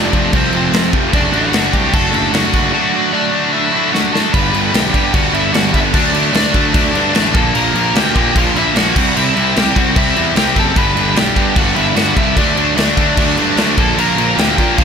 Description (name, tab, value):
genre	punk rock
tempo	150 BPM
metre	4/4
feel	straight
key	unclear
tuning	A4 = 440 Hz
part	high-gain lead guitar	melody	0.0-14.8 s	C4 to B5	-19 LUFS	equal	distortion, tape echo
part	cranked stack guitar	riff	0.0-14.8 s	G2 to F#4	-19 LUFS	right 15 dB	overdrive
part	distorted electric guitar	riff	0.0-14.8 s	F2 to D4	-18 LUFS	left 18 dB	overdrive
part	high-gain distorted guitar	riff	0.0-14.8 s	F2 to D4	-21 LUFS	left 2 dB	distortion
part	fuzz picked electric bass	bass	0.0-14.8 s	F1 to Bb2	-20 LUFS	equal	overdrive
part	big rock drum kit	drums	0.1-14.8 s	crash cymbal, kick drum, snare drum	-17 LUFS	equal	none
room	little or no reverb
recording	none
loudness	-11 LUFS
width	side -7 dB against mid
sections	0.0-4.3 A section; 4.3-14.8 B section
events	drum fill 3.9-4.3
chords	0.0 F; 1.1 D/F#; 4.3 G; 5.9 D; 7.3 Bb; 9.0 C; 10.8 G; 12.4 D; 13.8 Bb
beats	0.33 0.73 | 1.13 1.53 1.93 2.33 | 2.73 3.13 3.54 3.94 | 4.34 4.74 5.14 5.54 | 5.94 6.34 6.75 7.15 | 7.55 7.95 8.35 8.75 | 9.15 9.55 9.96 10.36 | 10.76 11.16 11.56 11.97 | 12.37 12.77 13.17 13.57 | 13.97 14.38 14.78